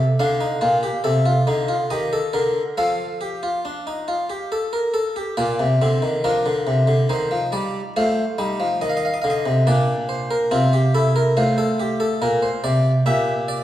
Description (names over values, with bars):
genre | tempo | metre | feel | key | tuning
classical, baroque-style 3-part fugue for harpsichord | 70 BPM | 3/4 | straight | Bb major | A4 = 440 Hz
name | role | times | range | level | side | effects
harpsichord | solo | 0.0-13.6 s | A2 to F5 | -18 LUFS | equal | none
room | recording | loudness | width
wet recital hall reverb, RT60 1.6 s | recorded in a church or concert hall, vinyl crackle | -18 LUFS | side -12 dB against mid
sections
0.0-5.4 A section; 5.4-13.6 B section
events
none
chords
0.0 Dm; 1.9 Ebmaj7#11; 2.8 F; 5.4 Bb; 7.1 Eb; 8.0 F7; 9.7 Bb; 10.5 F/C; 12.2 Bb; 13.1 C7/Bb (rootless)